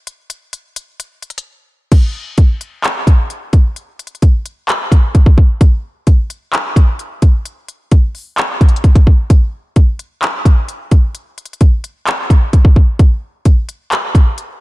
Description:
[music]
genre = hip hop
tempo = 130 BPM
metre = 4/4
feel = half-time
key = none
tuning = none
[part]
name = trap drum kit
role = drums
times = 0.1-14.5 s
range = crash cymbal, handclaps, hi-hat, kick drum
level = -9 LUFS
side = equal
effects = none
[sound]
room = little or no reverb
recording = dark, warm production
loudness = -10 LUFS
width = side -20 dB against mid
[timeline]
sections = 0.0-1.9 A section; 1.9-14.6 B section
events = break 1.5-1.9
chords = none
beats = | 0.07 0.53 0.99 1.46 | 1.92 2.38 2.84 3.30 | 3.76 4.22 4.69 5.15 | 5.61 6.07 6.53 6.99 | 7.46 7.92 8.38 8.84 | 9.30 9.76 10.22 10.69 | 11.15 11.61 12.07 12.53 | 12.99 13.46 13.92 14.38

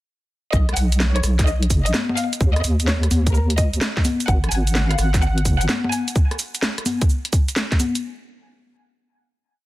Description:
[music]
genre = UK garage, two-step garage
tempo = 128 BPM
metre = 4/4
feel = swing 67% on 16ths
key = unclear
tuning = A4 = 440 Hz
[part]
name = clear studio violin section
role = melody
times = 0.5-6.1 s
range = A#4 to G#5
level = -28 LUFS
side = left 1 dB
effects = dub echo
[part]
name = deep soft wobble bass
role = bass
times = 0.5-5.7 s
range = F#1 to D#2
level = -19 LUFS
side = equal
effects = chorus
[part]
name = electronic kick drum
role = drums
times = 0.5-7.8 s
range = none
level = -19 LUFS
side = equal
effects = none
[part]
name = garage drum kit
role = drums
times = 0.5-8.0 s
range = congas, hi-hat, rim click, shaker, snare drum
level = -23 LUFS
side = left 1 dB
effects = none
[part]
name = warm analog pad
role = sustained chords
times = 4.3-6.2 s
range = F#5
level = -33 LUFS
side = right 3 dB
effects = chorus, sidechain pumping
[sound]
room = little or no reverb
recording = dense, heavily limited modern master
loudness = -17 LUFS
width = side -17 dB against mid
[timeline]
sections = 0.5-8.0 drop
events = drop 0.5-8.0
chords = 0.5 B5; 2.4 N.C.; 4.0 F#sus2; 6.2 N.C.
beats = | 0.53 1.00 1.47 1.94 | 2.41 2.88 3.34 3.81 | 4.28 4.75 5.22 5.69 | 6.16 6.63 7.09 7.56

